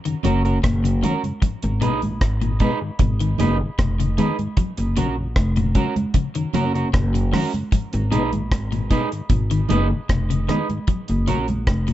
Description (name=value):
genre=roots reggae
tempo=76 BPM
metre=4/4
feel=straight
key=unclear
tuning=A4 = 437 Hz
part: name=mellow tonewheel organ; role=accompaniment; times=0.1-11.9 s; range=Gb2 to Eb4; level=-27 LUFS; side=left 2 dB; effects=chorus vibrato, slow rotary speaker
part: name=clean electric guitar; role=arpeggios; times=0.1-11.9 s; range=Ab2 to Gb3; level=-26 LUFS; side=left 6 dB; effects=none
part: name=deep reggae drum kit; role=drums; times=0.1-11.9 s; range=hi-hat, kick drum, rim click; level=-22 LUFS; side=equal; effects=none
part: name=electric guitar at the edge of break-up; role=accompaniment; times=0.2-11.5 s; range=Db4 to Cb5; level=-27 LUFS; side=right 5 dB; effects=tape echo
part: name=upright bass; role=bass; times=0.2-11.9 s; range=F1 to Bb1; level=-21 LUFS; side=equal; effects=none
part: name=congas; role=percussion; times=0.2-11.7 s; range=none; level=-27 LUFS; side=right 4 dB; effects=none
room=little or no reverb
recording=nothing above 7.8 kHz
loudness=-18 LUFS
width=side -13 dB against mid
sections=0.0-11.9 A section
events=none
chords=0.0 Gb; 1.4 Abm; 4.6 Gb; 7.7 Abm; 10.9 Gb